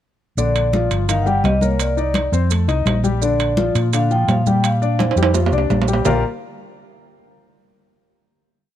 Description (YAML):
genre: Afro-Cuban jazz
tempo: 169 BPM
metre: 4/4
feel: straight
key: Bb major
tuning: A4 = 439 Hz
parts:
  - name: vibraphone with medium mallets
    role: melody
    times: 0.4-6.2 s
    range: Db5 to Bb5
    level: -22 LUFS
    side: right 1 dB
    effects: none
  - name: warm grand piano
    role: accompaniment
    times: 0.4-6.2 s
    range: D3 to F5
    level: -22 LUFS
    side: left 8 dB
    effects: none
  - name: hollow-body short-scale fingered electric bass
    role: bass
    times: 0.4-6.2 s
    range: G1 to Bb2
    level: -19 LUFS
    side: right 1 dB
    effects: none
  - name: congas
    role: percussion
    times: 0.4-6.1 s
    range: none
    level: -23 LUFS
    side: left 2 dB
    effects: none
  - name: maracas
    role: percussion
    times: 0.4-6.1 s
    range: none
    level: -31 LUFS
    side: right 21 dB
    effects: none
  - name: timbales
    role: percussion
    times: 0.6-6.1 s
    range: none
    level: -22 LUFS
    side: right 7 dB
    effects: none
room: small room ambience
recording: dry, close 1970s-style studio recording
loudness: -15 LUFS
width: side -11 dB against mid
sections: 0.4-6.1 A section; 6.1-7.5 final chord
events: drum fill 5.0-6.1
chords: 0.4 Bb6; 1.1 Eb6/G; 1.8 Cm9; 2.5 F7; 3.2 Bb6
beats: | 0.38 0.74 1.09 1.45 | 1.80 2.16 2.51 2.87 | 3.22 3.58 3.93 4.28 | 4.64 4.99 5.35 5.70 | 6.05